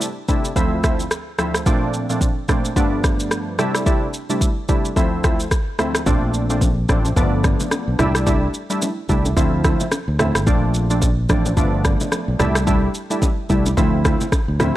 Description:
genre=afrobeats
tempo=109 BPM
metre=4/4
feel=swing 58% on 16ths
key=C major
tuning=A4 = 439 Hz
part: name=glassy digital keys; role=accompaniment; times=0.0-14.8 s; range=D2 to E4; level=-21 LUFS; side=equal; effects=chorus
part: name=afro-pop drum kit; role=drums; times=0.0-14.7 s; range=kick drum, rim click, shaker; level=-20 LUFS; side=equal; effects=none
part: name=fingered electric bass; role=bass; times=6.1-14.7 s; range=G1 to D2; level=-20 LUFS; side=equal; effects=none
part: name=congas and bongos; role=percussion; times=6.1-14.7 s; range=none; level=-26 LUFS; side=equal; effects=none
room=little or no reverb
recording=dry, gritty hardware recording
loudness=-16 LUFS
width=side -14 dB against mid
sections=0.0-14.8 A section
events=none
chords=0.0 C6; 0.6 Dm7; 1.7 Bbmaj7; 2.8 G9; 3.6 C6; 5.0 Dm7; 6.1 Bbmaj7; 7.2 G9; 8.0 C6; 9.4 Dm7; 10.5 Bbmaj7; 11.6 G9; 12.4 C6; 13.8 Dm7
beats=0.01 0.56 1.11 | 1.66 2.21 2.76 3.31 | 3.86 4.41 4.96 5.51 | 6.07 6.62 7.17 7.72 | 8.27 8.82 9.37 9.92 | 10.47 11.02 11.57 12.12 | 12.67 13.22 13.77 14.32

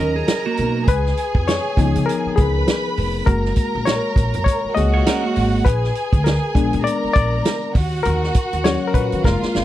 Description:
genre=lush 1970s-style soul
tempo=100 BPM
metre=4/4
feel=swing 58% on 16ths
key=F# major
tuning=A4 = 440 Hz
part: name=warm studio violin section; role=second line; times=0.0-9.6 s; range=E#4 to B5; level=-25 LUFS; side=right 2 dB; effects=none
part: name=barky reed electric piano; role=accompaniment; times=0.0-9.6 s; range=E#3 to D#5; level=-22 LUFS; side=left 5 dB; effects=overdrive
part: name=clean electric guitar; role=riff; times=0.0-0.9, 4.9-5.6 s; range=A#3 to C#5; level=-22 LUFS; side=right 6 dB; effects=none
part: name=upright bass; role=bass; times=0.0-9.6 s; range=E#1 to D#3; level=-21 LUFS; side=equal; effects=none
part: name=vintage drum kit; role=drums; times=0.3-9.6 s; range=hi-hat, kick drum, snare drum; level=-19 LUFS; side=right 1 dB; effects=none
room=little or no reverb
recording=dry, close 1970s-style studio recording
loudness=-16 LUFS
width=side -13 dB against mid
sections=0.0-9.6 A section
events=reed electric piano solo 0.0-9.6; drum fill 9.2-9.6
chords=0.0 D#m9; 0.9 C#7; 3.3 F#add9; 5.7 A#7b9; 7.7 D#m7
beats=0.28 | 0.88 1.48 2.07 2.67 | 3.27 3.87 4.46 5.06 | 5.66 6.26 6.85 7.45 | 8.05 8.64 9.24

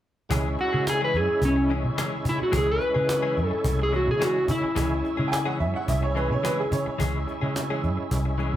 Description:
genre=straight-eighth soul blues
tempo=108 BPM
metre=4/4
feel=straight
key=C# harmonic minor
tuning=A4 = 440 Hz
part: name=overdriven tonewheel organ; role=accompaniment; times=0.3-8.6 s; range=G#3 to E4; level=-31 LUFS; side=right 2 dB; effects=slow rotary speaker, chorus vibrato
part: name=direct-recorded clean electric guitar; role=stabs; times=0.3-8.6 s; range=E3 to G#4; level=-33 LUFS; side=left 4 dB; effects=none
part: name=vintage muted fingered electric bass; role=bass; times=0.3-8.6 s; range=B#1 to C#3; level=-27 LUFS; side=equal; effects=none
part: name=cajon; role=drums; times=0.3-8.5 s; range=none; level=-32 LUFS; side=equal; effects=none
part: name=electric slide guitar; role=melody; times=0.6-5.6 s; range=C#4 to B4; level=-24 LUFS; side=equal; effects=none
part: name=clear upright piano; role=second line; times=5.3-7.0 s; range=G#4 to G#5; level=-28 LUFS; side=right 2 dB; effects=none
room=light reverb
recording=band playing live in one room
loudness=-22 LUFS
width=side -12 dB against mid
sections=0.3-8.6 A section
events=none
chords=0.3 C#m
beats=| 0.30 0.86 1.42 1.98 | 2.53 3.09 3.65 4.21 | 4.76 5.32 5.88 6.44 | 7.00 7.55 8.11

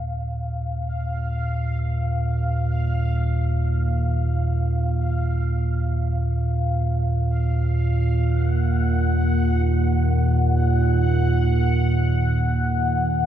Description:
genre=dark ambient drone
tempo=free time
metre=none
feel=none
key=Eb minor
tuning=A4 = 440 Hz
part: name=deep rumbling drone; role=drone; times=0.0-13.3 s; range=Eb2 to Bb2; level=-20 LUFS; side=right 1 dB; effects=built-in reverb
part: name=bubbling stepped-filter texture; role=texture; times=0.0-13.3 s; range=F5 to Gb5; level=-30 LUFS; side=left 4 dB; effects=chorus, built-in reverb
room=moderate echo chamber reverb, RT60 2.6 s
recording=none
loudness=-20 LUFS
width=side -10 dB against mid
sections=0.0-13.3 A section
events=fade-in on synth texture 0.0-13.3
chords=0.0 Ebmadd9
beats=free time

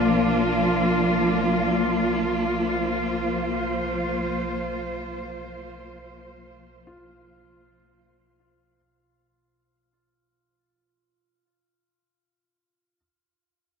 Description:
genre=dark ambient drone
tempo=free time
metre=none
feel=none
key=unclear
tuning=A4 = 440 Hz
part: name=dark symphonic cello section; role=sustained chords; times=0.0-8.8 s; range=E#3 to C5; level=-22 LUFS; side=equal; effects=shimmer reverb
part: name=deep rumbling drone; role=drone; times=0.0-8.9 s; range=B1 to B2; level=-38 LUFS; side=equal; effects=built-in reverb
part: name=warm concert grand piano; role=arpeggios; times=6.9-13.0 s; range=E#4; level=-56 LUFS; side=left 1 dB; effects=none
room=wet cathedral reverb, RT60 5.6 s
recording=in a vast, echoing space, cassette tape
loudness=-22 LUFS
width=side -6 dB against mid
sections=0.0-8.8 A section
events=fade-out 0.0-8.8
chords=0.0 A#/B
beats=free time

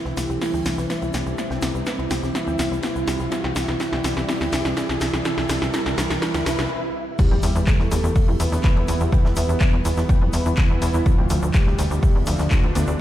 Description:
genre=melodic techno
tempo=124 BPM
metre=4/4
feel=straight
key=E phrygian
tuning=A4 = 444 Hz
part: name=soft octave-layered synth lead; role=melody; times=0.0-12.9 s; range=E4 to B4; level=-29 LUFS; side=right 1 dB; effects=chorus, cassette tape, sidechain pumping, tape echo
part: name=soft supersaw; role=second line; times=0.0-12.9 s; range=E3 to B3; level=-31 LUFS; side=equal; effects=sidechain pumping, dub echo
part: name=dark analog pad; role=sustained chords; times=0.1-13.0 s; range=G3 to D5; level=-34 LUFS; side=equal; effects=chorus, sidechain pumping
part: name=riser, swell and impact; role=sound effects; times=0.1-9.1 s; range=none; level=-31 LUFS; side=equal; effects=none
part: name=granular cloud pad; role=texture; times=0.0-6.7 s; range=C4 to E5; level=-36 LUFS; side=left 1 dB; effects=none
part: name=soft round pluck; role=arpeggios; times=0.1-13.0 s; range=B3 to G5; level=-33 LUFS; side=right 1 dB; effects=ensemble chorus, sidechain pumping, dub echo
part: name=tight sequencer bass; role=bass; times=0.1-13.0 s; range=C2 to F2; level=-24 LUFS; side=equal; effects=sidechain pumping
part: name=tight metal drum kit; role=drums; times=0.1-12.9 s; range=hi-hat, ride cymbal, snare drum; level=-40 LUFS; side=left 2 dB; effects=sidechain pumping on cymbals, high-pass filter on cymbals, sidechain pumping on hats, high-pass filter on hats, high-pass filter on snare, high-pass filter on room
part: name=punchy analog drum machine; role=drums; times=0.2-12.9 s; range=crash cymbal, handclaps, hi-hat, snare drum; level=-28 LUFS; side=equal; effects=none
part: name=tube shaker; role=percussion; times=0.2-13.0 s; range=none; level=-40 LUFS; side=left 4 dB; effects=none
part: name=brassy analog pad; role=stabs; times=0.8-13.0 s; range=C3 to E4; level=-33 LUFS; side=right 2 dB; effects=chorus, sidechain pumping, dub echo
part: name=analog drone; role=drone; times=8.0-13.0 s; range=E2 to B2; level=-35 LUFS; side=left 1 dB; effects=none
part: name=electronic kick drum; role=drums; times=7.2-12.6 s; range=none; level=-18 LUFS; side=equal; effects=none
room=light reverb, digital ambience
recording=played on a big sound system in a bare room, large studio reverb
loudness=-19 LUFS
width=side -13 dB against mid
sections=0.0-7.2 A section; 7.2-13.0 B section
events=build-up 0.0-7.2; drum fill 0.0-6.7; filter sweep on analog synth pad 0.0-7.2; riser 0.1-6.7; swell 6.2-7.2; stop 6.7-7.2; drop 7.2-13.0; impact 7.2-9.1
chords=0.0 C; 7.2 Em; 11.1 Dm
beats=0.41 0.90 | 1.38 1.87 2.35 2.83 | 3.32 3.80 4.29 4.77 | 5.25 5.74 6.22 6.71 | 7.19 7.67 8.16 8.64 | 9.12 9.61 10.09 10.58 | 11.06 11.54 12.03 12.51 | 12.99

